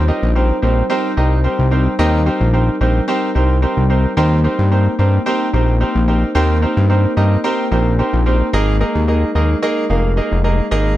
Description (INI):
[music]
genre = pop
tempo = 110 BPM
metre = 4/4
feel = straight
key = unclear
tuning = A4 = 437 Hz
[part]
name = glass harmonica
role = sustained chords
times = 0.0-11.0 s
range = G3 to C5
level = -23 LUFS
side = left 2 dB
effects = none
[part]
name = fat analog bass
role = bass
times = 0.0-11.0 s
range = F1 to G2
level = -14 LUFS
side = equal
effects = none
[part]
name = clear concert grand piano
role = accompaniment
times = 0.1-10.9 s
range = Bb3 to F5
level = -18 LUFS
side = right 2 dB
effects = none
[sound]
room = studio reverb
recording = none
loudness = -13 LUFS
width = side -14 dB against mid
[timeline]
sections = 0.0-11.0 A section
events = none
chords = 0.0 Eb6; 8.5 Absus2